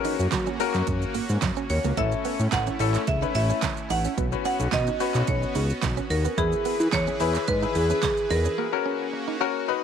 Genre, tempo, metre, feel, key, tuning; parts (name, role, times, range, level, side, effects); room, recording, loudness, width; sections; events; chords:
dance-pop; 109 BPM; 4/4; straight; A4 = 440 Hz
marimba with hard mallets; melody; 0.0-9.4 s; G#4 to F#5; -29 LUFS; right 1 dB; slapback echo
bright concert grand piano; accompaniment; 0.0-9.8 s; C#4 to B4; -28 LUFS; left 14 dB; sidechain pumping
supersaw pad; sustained chords; 0.0-9.8 s; E3 to B4; -33 LUFS; right 1 dB; sidechain pumping
deep house drum kit; drums; 0.0-8.6 s; handclaps, hi-hat, kick drum, shaker, snare drum; -30 LUFS; right 4 dB; overdrive
direct-recorded clean electric guitar; riff; 0.1-9.5 s; A3 to F#4; -33 LUFS; right 15 dB; analog chorus
fat analog bass; bass; 0.2-8.5 s; A1 to F#3; -25 LUFS; equal; sidechain pumping
group handclap; percussion; 0.3-8.2 s; -41 LUFS; left 14 dB
digital ambience; 1960s-style stereo with parts hard left and right; -22 LUFS; side -8 dB against mid
0.0-9.8 A section
break 8.6-9.8
0.0 F#; 2.0 A; 4.2 Bsus2; 6.4 E; 8.6 F#